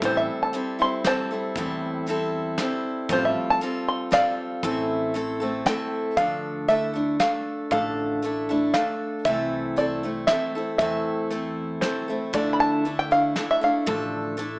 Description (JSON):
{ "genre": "acoustic folk duo or small band", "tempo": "117 BPM", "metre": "3/4", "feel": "straight", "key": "A minor", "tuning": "A4 = 440 Hz", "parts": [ { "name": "picked steel-string acoustic guitar", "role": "accompaniment", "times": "0.0-14.6 s", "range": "A2 to A4", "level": "-25 LUFS", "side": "equal", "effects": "none" }, { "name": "upright bass", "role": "bass", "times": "0.0-14.6 s", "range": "A1 to E2", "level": "-36 LUFS", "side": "equal", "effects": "none" }, { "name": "soft brush drum kit", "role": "drums", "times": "0.0-14.5 s", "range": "hi-hat, kick drum, snare drum", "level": "-32 LUFS", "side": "equal", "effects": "none" }, { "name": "open-back banjo", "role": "melody", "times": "0.1-14.4 s", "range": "C5 to C6", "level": "-23 LUFS", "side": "equal", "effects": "none" } ], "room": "light reverb", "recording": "small speaker sound", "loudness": "-22 LUFS", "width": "side -26 dB against mid", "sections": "0.0-6.2 A section; 6.2-14.6 B section", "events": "five-string banjo solo 0.0-6.2", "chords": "0.0 Am7; 3.1 Fadd9/A; 4.6 Am; 6.2 Dmadd9; 9.3 Am/C; 12.3 Dmadd9", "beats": "| 0.02 0.54 1.05 | 1.56 2.07 2.58 | 3.10 3.61 4.12 | 4.63 5.15 5.66 | 6.17 6.69 7.20 | 7.71 8.23 8.74 | 9.25 9.77 10.28 | 10.79 11.31 11.82 | 12.34 12.85 13.36 | 13.88 14.39" }